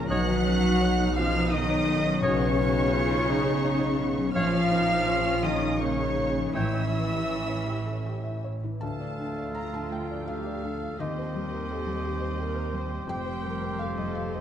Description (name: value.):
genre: cinematic.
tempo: 83 BPM.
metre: 3/4.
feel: rubato.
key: unclear.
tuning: A4 = 436 Hz.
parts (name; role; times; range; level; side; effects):
muted studio violin section; melody; 0.0-14.4 s; F4 to F#6; -35 LUFS; right 1 dB; none.
muted studio violin section; second line; 0.0-14.4 s; C#5 to Bb5; -38 LUFS; left 1 dB; none.
silver concert flute; second line; 0.0-8.4 s; C#5 to F#5; -33 LUFS; left 1 dB; none.
felt-muted upright piano; accompaniment; 0.0-14.4 s; A1 to Bb5; -35 LUFS; left 2 dB; none.
muted studio viola section; accompaniment; 0.0-14.4 s; A#3 to C5; -35 LUFS; left 1 dB; none.
concert harp; arpeggios; 0.0-14.4 s; A2 to E6; -36 LUFS; left 8 dB; none.
muted studio cello section; bass; 0.0-14.4 s; D2 to F#3; -31 LUFS; right 2 dB; none.
muted studio double bass section; bass; 0.0-14.4 s; F1 to Eb2; -32 LUFS; right 3 dB; none.
clear clarinet; second line; 0.1-14.4 s; G4 to C#5; -36 LUFS; equal; none.
warm oboe; second line; 0.1-14.4 s; C5 to G5; -39 LUFS; right 3 dB; none.
dark French horn section; sustained chords; 0.1-14.4 s; F3 to F#4; -33 LUFS; left 3 dB; none.
room: moderate scoring stage reverb, RT60 1.9 s.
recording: none.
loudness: -24 LUFS.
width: side -9 dB against mid.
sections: 0.0-8.8 A section; 8.8-14.4 B section.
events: none.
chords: 0.1 Badd9; 4.4 A#m; 6.6 A7; 8.8 Dm; 11.0 Cm/Eb; 13.1 Fsus2.